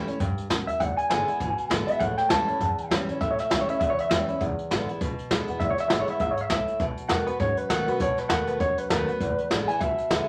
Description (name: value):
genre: rockabilly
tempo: 200 BPM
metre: 4/4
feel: swing 59% on 8ths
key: E mixolydian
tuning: A4 = 440 Hz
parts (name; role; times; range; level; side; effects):
- picked steel-string acoustic guitar; accompaniment; 0.0-10.3 s; E2 to F#4; -32 LUFS; equal; none
- upright bass; bass; 0.0-10.3 s; E1 to B2; -36 LUFS; equal; none
- jazz brush drum kit; drums; 0.1-10.2 s; hi-hat, kick drum, snare drum; -31 LUFS; equal; none
- electric guitar through a small old amp; melody; 0.7-10.3 s; B4 to A5; -28 LUFS; equal; none
room: moderate club reverb, RT60 0.6 s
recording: vinyl crackle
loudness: -26 LUFS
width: mono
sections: 0.0-10.3 A section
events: none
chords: 0.0 A7; 0.8 E7; 2.0 A7; 4.4 E7; 6.8 B7; 9.2 E7